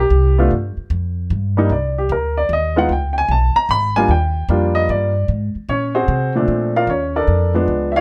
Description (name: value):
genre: jazz piano trio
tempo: 151 BPM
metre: 3/4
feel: swing 66% on 8ths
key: Bb major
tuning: A4 = 442 Hz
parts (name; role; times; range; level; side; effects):
- warm upright piano; melody; 0.0-8.0 s; Bb2 to Cb6; -19 LUFS; equal; none
- upright bass; bass; 0.0-8.0 s; Ab1 to C3; -21 LUFS; equal; none
room: light reverb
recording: close, detailed microphones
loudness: -17 LUFS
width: mono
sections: 0.0-6.5 A section; 6.5-8.0 B section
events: none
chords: 0.0 Bb69 (rootless); 0.5 G5; 1.7 Cmadd9; 2.9 Db7(no3); 4.1 Ebmaj7; 5.3 Ab9; 6.5 Bbmaj7